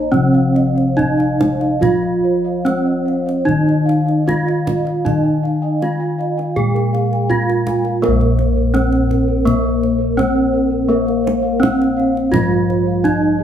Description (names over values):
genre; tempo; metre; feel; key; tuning
Javanese gamelan; 71-84 BPM; 4/4; straight; Bb slendro; A4 = 440 Hz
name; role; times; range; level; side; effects
gamelan-type bronze metallophone; melody; 0.0-13.4 s; Bb3 to Ab4-40c; -18 LUFS; right 2 dB; none
gamelan-type bronze metallophone; accompaniment; 0.0-13.4 s; C3+40c to Bb3; -20 LUFS; left 4 dB; none
gamelan-type bossed gongs; arpeggios; 0.0-13.4 s; Ab4-40c to Ab5-40c; -26 LUFS; left 4 dB; none
gamelan-type bronze metallophone; arpeggios; 0.0-13.4 s; Ab4-40c to Ab5-40c; -25 LUFS; right 5 dB; none
gamelan-type bossed gongs; bass; 0.0-13.4 s; Bb1 to Bb4; -21 LUFS; right 1 dB; none
kendang; percussion; 0.1-13.2 s; none; -25 LUFS; right 2 dB; none
room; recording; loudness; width
wet large studio reverb, RT60 1.1 s; band playing live in one room; -14 LUFS; side -9 dB against mid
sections
0.0-8.0 A section; 8.0-13.4 B section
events
none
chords
none